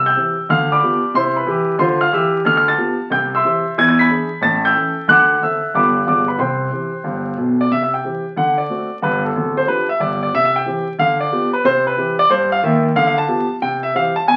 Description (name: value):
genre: jazz, stride piano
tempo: 183 BPM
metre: 4/4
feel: swing 66% on 8ths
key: C major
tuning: A4 = 440 Hz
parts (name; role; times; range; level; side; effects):
- warm concert grand piano; solo; 0.0-14.4 s; D1 to B6; -17 LUFS; equal; none
room: wet club reverb, RT60 0.6 s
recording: very old 78 rpm record, vinyl crackle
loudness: -17 LUFS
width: mono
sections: 0.0-7.7 A section; 7.7-14.4 A section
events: none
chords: 0.5 G7/D; 1.1 C; 2.5 G7/D; 3.1 C; 3.8 E7; 4.4 A7; 5.1 D7; 5.7 G9; 6.1 G7b9; 6.4 C; 8.4 D7; 9.0 G5; 10.3 C; 11.0 G7/D; 11.6 C; 12.9 G7/D; 13.6 C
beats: 0.16 0.49 0.82 | 1.14 1.47 1.80 2.13 | 2.46 2.78 3.11 3.44 | 3.77 4.10 4.42 4.75 | 5.08 5.41 5.74 6.07 | 6.39 6.72 7.05 7.38 | 7.71 8.03 8.36 8.69 | 9.02 9.35 9.68 10.00 | 10.33 10.66 10.99 11.31 | 11.64 11.97 12.30 12.62 | 12.95 13.28 13.61 13.93 | 14.26